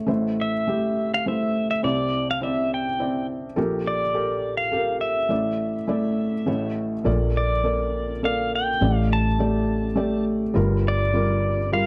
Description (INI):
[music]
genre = acoustic folk-pop ballad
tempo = 104 BPM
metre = 3/4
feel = straight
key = unclear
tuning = A4 = 439 Hz
[part]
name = felt-muted upright piano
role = accompaniment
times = 0.0-11.9 s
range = G1 to D5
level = -26 LUFS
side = equal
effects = none
[part]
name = pedal steel guitar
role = melody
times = 0.4-11.9 s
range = D5 to A5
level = -28 LUFS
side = equal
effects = none
[part]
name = vintage muted fingered electric bass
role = bass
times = 7.1-11.9 s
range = G1 to Bb1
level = -27 LUFS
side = equal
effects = none
[sound]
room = moderate studio reverb, RT60 0.6 s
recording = cassette tape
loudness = -23 LUFS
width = mono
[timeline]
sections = 0.0-7.1 A section; 7.1-11.9 B section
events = none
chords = 0.1 Am; 1.8 Cadd9; 3.6 Gmadd9/Bb; 5.3 Asus4; 6.5 A; 7.1 Bbmaj7; 8.8 A7sus4; 10.6 Gm7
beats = | 0.09 0.68 1.26 | 1.84 2.41 2.99 | 3.57 4.14 4.72 | 5.30 5.89 6.48 | 7.07 7.66 8.24 | 8.83 9.41 9.98 | 10.56 11.14 11.72